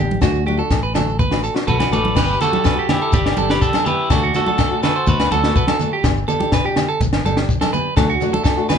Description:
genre	highlife guitar band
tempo	124 BPM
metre	4/4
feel	straight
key	G major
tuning	A4 = 441 Hz
part	flamenco guitar	accompaniment	0.0-8.7 s	F#3 to G4	-26 LUFS	left 6 dB	none
part	electric guitar at the edge of break-up	arpeggios	0.0-8.8 s	F#4 to C5	-22 LUFS	right 5 dB	none
part	fingered electric bass	bass	0.0-8.2 s	G1 to D2	-22 LUFS	equal	none
part	congas	percussion	0.1-8.8 s	none	-25 LUFS	right 2 dB	none
part	shekere	percussion	0.1-8.8 s	none	-25 LUFS	left 5 dB	none
part	compact cocktail drum kit	drums	0.2-8.8 s	crash cymbal, kick drum, snare drum	-20 LUFS	equal	none
part	agogo bells	percussion	0.2-8.8 s	none	-28 LUFS	left 11 dB	none
part	electric guitar at the edge of break-up	melody	1.7-5.8 s	D4 to D5	-21 LUFS	equal	spring reverb, tape echo
room	light reverb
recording	band playing live in one room, nothing above 10.4 kHz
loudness	-15 LUFS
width	side -7 dB against mid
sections	0.0-2.2 A section; 2.2-8.8 B section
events	none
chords	0.2 D; 2.2 G; 4.1 D; 6.0 G; 8.0 D

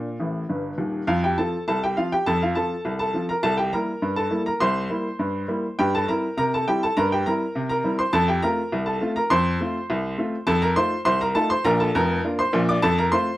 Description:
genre	ragtime piano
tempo	102 BPM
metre	2/4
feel	straight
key	F major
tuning	A4 = 440 Hz
part	clear upright piano	solo	0.0-13.4 s	Eb1 to D6	-20 LUFS	equal	none
room	light reverb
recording	none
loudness	-20 LUFS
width	side -16 dB against mid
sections	0.0-1.1 A section; 1.1-13.4 B section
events	upright piano fill 0.2-1.1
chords	0.0 N.C.; 1.1 F; 3.4 C7; 5.8 C7/G; 8.1 F; 10.5 F7; 11.6 Bb; 12.8 F

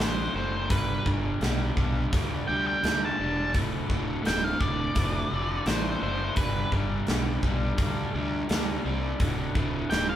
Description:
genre	blues rock power trio and southern rock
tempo	85 BPM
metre	4/4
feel	straight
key	unclear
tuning	A4 = 441 Hz
part	octave-fuzz lead guitar	melody	0.0-10.2 s	B4 to A5	-30 LUFS	equal	distortion
part	crunchy overdriven guitar	riff	0.0-10.2 s	D2 to G3	-31 LUFS	equal	none
part	fuzz fingered electric bass	bass	0.0-10.2 s	D1 to D2	-31 LUFS	equal	overdrive
part	big rock drum kit	drums	0.0-10.1 s	hi-hat, kick drum, snare drum	-29 LUFS	equal	none
room	moderate large studio reverb, RT60 0.9 s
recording	band playing live in one room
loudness	-25 LUFS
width	side -11 dB against mid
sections	0.0-10.2 A section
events	none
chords	0.0 D5; 0.7 G; 3.5 Dm; 6.4 G; 9.2 D5

